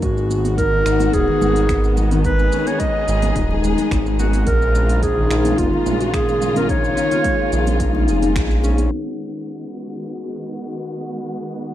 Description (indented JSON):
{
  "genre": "organic downtempo",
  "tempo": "108 BPM",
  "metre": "4/4",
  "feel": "straight",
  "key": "G# dorian",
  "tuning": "A4 = 439 Hz",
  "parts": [
    { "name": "mellow clarinet", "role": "melody", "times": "0.0-7.8 s", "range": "E#4 to D#5", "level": "-21 LUFS", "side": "right 2 dB", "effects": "ping-pong delay" },
    { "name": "dark studio string section", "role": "sustained chords", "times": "0.0-11.7 s", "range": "C#3 to G#4", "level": "-27 LUFS", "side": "left 1 dB", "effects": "sidechain pumping, low-pass filter" },
    { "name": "concert harp", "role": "arpeggios", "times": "0.0-11.5 s", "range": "D#3 to G#4", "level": "-23 LUFS", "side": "left 4 dB", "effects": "ping-pong delay" },
    { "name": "smooth synth bass", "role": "bass", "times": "0.0-8.9 s", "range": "D#1 to A#1", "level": "-19 LUFS", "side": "equal", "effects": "none" },
    { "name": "electronic kick drum", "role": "drums", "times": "0.0-8.5 s", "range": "none", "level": "-24 LUFS", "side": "equal", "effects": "overdrive, small room ambience" },
    { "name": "organic electronic drum kit", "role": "drums", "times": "0.0-11.7 s", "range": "finger snaps, hi-hat, shaker", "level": "-32 LUFS", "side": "right 2 dB", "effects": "low-pass filter on perc, small room ambience, low-pass filter on snare, low-pass filter on hats" },
    { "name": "drifting glass-harmonics texture", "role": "texture", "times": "1.3-8.9 s", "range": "D#4 to D#5", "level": "-38 LUFS", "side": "equal", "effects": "none" },
    { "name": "congas", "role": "percussion", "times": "0.3-8.9 s", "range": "none", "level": "-29 LUFS", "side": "right 5 dB", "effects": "none" }
  ],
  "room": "light reverb, small room ambience",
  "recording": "rough home demo mix, low-pass filter",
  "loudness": "-15 LUFS",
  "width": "side -12 dB against mid",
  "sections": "0.0-8.9 A section; 8.9-11.7 B section",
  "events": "band accent 8.4",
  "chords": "0.0 G#m7; 4.5 A#m7; 8.9 G#m7"
}